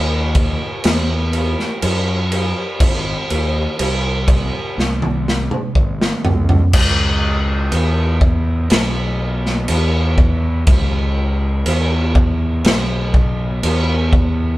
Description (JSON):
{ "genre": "stoner and doom metal", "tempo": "61 BPM", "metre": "4/4", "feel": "straight", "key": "C# minor from 6.7 s", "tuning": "A4 = 435 Hz", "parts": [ { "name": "fuzz fingered electric bass", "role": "bass", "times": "0.0-14.6 s", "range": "G#1 to F#2", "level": "-18 LUFS", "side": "equal", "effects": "overdrive" }, { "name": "raw garage drum kit", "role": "drums", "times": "0.3-14.4 s", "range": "crash cymbal, kick drum, snare drum, toms", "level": "-17 LUFS", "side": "equal", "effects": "none" } ], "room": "light reverb", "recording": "band playing live in one room", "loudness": "-14 LUFS", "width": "side -17 dB against mid", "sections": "0.0-6.7 A section; 6.7-14.6 B section", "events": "drum fill 4.8-6.7", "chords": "none", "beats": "0.84 1.82 | 2.80 3.79 4.77 5.75 | 6.74 7.72 8.71 9.69 | 10.68 11.66 12.65 13.64" }